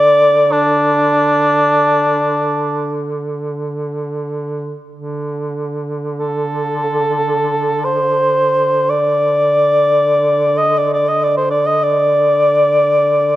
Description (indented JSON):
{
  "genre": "caucasian folk, Caucasian lament",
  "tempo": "free time",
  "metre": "none",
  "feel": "none",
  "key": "unclear",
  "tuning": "A4 = 440 Hz",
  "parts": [
    { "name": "dark cor anglais", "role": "melody", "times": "0.0-13.4 s", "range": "D4 to Eb5", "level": "-12 LUFS", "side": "equal", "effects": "none" },
    { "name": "warm duduk", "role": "drone", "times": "0.0-13.4 s", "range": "D3", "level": "-21 LUFS", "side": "right 2 dB", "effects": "none" }
  ],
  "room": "moderate concert hall reverb, RT60 2.0 s",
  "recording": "none",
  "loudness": "-13 LUFS",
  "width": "side -15 dB against mid",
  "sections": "0.0-4.9 A section; 4.9-13.4 A section",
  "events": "none",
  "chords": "none"
}